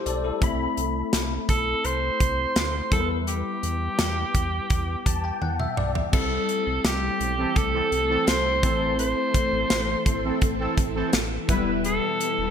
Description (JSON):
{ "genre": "1980s-style pop", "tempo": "84 BPM", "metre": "4/4", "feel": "straight", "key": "A minor", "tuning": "A4 = 440 Hz", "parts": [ { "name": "bell-like tine electric piano", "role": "accompaniment", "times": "0.0-12.5 s", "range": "F#3 to B5", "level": "-30 LUFS", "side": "left 6 dB", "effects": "ensemble chorus" }, { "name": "round analog bass", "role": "bass", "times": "0.1-12.5 s", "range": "E1 to E2", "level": "-30 LUFS", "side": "right 1 dB", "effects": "none" }, { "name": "modern studio drum kit", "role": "drums", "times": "0.1-12.4 s", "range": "crash cymbal, hi-hat, kick drum, snare drum, toms", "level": "-25 LUFS", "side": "equal", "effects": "gated reverb" }, { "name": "bright alto saxophone", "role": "melody", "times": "1.5-12.5 s", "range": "G4 to C5", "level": "-26 LUFS", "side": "right 1 dB", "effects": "ping-pong delay" }, { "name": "string machine, violins", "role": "sustained chords", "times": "6.1-12.5 s", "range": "B2 to A4", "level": "-31 LUFS", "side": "equal", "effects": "ensemble chorus" }, { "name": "analog synth brass", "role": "stabs", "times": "7.4-11.8 s", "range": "E3 to B4", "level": "-30 LUFS", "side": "right 3 dB", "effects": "chorus" } ], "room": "moderate plate reverb, RT60 1.7 s, studio ambience", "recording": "bright 1980s-style digital production", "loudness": "-22 LUFS", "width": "side -8 dB against mid", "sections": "0.0-6.1 A section; 6.1-12.5 B section", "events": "tine electric piano fill 4.7-6.1; drum fill 5.4-6.1", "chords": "0.4 Amadd9; 2.9 Em; 6.1 C6; 8.6 Am; 11.5 Em", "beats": "| 0.42 1.13 1.85 2.56 | 3.27 3.99 4.70 5.42 | 6.13 6.85 7.56 8.28 | 8.99 9.70 10.42 11.13 | 11.85" }